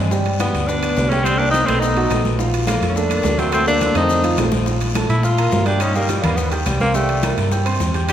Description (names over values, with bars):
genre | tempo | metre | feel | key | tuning
Afro-Cuban jazz | 211 BPM | 4/4 | straight | G minor | A4 = 440 Hz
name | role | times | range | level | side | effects
dark grand piano | accompaniment | 0.0-8.1 s | F3 to G6 | -23 LUFS | right 3 dB | none
hollow-body short-scale fingered electric bass | bass | 0.0-8.1 s | Bb1 to Bb2 | -21 LUFS | equal | none
bongos | percussion | 0.1-8.1 s | none | -31 LUFS | left 4 dB | none
congas | percussion | 0.1-8.1 s | none | -27 LUFS | left 2 dB | none
guiro | percussion | 0.1-8.1 s | none | -34 LUFS | left 5 dB | none
maracas | percussion | 0.1-8.1 s | none | -35 LUFS | left 6 dB | none
timbales | percussion | 0.3-8.1 s | none | -29 LUFS | right 5 dB | none
warm tenor saxophone | melody | 0.4-8.1 s | D#3 to G4 | -21 LUFS | equal | none
dark trombone | second line | 0.4-4.5 s | F3 to C4 | -25 LUFS | left 3 dB | none
claves | percussion | 0.4-8.1 s | none | -36 LUFS | left 8 dB | none
room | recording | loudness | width
wet concert hall reverb, RT60 2.1 s | recorded in a church or concert hall | -15 LUFS | side -10 dB against mid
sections
0.0-4.7 A section; 4.7-8.1 B section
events
drum fill 3.8-4.7; tenor saxophone solo 4.7-8.1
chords
0.1 G; 1.3 C5; 1.8 B7; 2.4 Bbmaj7; 3.5 D7b13; 4.1 F7; 4.7 Bb5; 5.8 Gaug; 6.9 C5